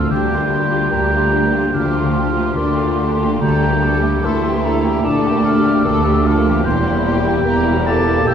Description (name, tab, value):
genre	cinematic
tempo	74 BPM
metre	4/4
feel	rubato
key	unclear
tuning	A4 = 440 Hz
part	muted symphonic violin section	melody	0.0-8.3 s	E4 to A4	-25 LUFS	left 2 dB	none
part	hollow concert flute	second line	0.0-8.3 s	A5 to F6	-26 LUFS	equal	none
part	muted studio violin section	second line	0.0-8.3 s	A3 to G4	-27 LUFS	left 2 dB	none
part	warm oboe	second line	0.0-8.3 s	D5 to A5	-22 LUFS	right 1 dB	none
part	dark baby grand piano	accompaniment	0.0-8.3 s	D2 to C5	-23 LUFS	left 2 dB	none
part	muted symphonic viola section	accompaniment	0.0-8.3 s	D4 to A4	-24 LUFS	left 2 dB	none
part	warm French horn section	sustained chords	0.0-8.3 s	D3 to Bb3	-25 LUFS	left 4 dB	none
part	concert harp	arpeggios	0.0-8.3 s	D3 to Bb4	-28 LUFS	left 4 dB	none
part	muted symphonic cello section	bass	0.1-8.3 s	D2 to E2	-21 LUFS	right 2 dB	none
part	muted symphonic double bass section	bass	0.1-8.3 s	E1 to D2	-21 LUFS	right 3 dB	none
room	wet scoring stage reverb, RT60 1.6 s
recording	heard from further back in the room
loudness	-14 LUFS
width	side -8 dB against mid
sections	0.0-8.3 A section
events	none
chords	0.1 Bb6/D; 3.4 Gmadd9/D; 6.7 Edim